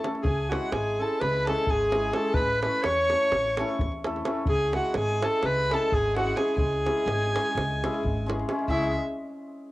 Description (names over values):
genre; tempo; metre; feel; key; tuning
balkan folk, Balkan wedding band; 255 BPM (eighths); 9/8; straight; C# minor; A4 = 442 Hz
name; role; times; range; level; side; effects
hammered dulcimer; accompaniment; 0.0-9.0 s; G#3 to A4; -31 LUFS; left 1 dB; cassette tape
davul; percussion; 0.0-8.9 s; none; -31 LUFS; right 1 dB; none
warm alto saxophone; melody; 0.2-8.9 s; E4 to C#5; -27 LUFS; equal; cassette tape, plate reverb
rich violin; second line; 0.2-8.9 s; E5 to C#6; -32 LUFS; right 1 dB; cassette tape, plate reverb
upright bass; bass; 0.2-8.9 s; G#1 to E2; -32 LUFS; equal; tube saturation
room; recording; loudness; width
moderate small room reverb, RT60 0.6 s; home recording on cassette; -23 LUFS; side -17 dB against mid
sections
0.0-8.7 A section; 8.7-9.7 B section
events
none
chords
0.2 C#m; 2.3 A; 4.5 C#m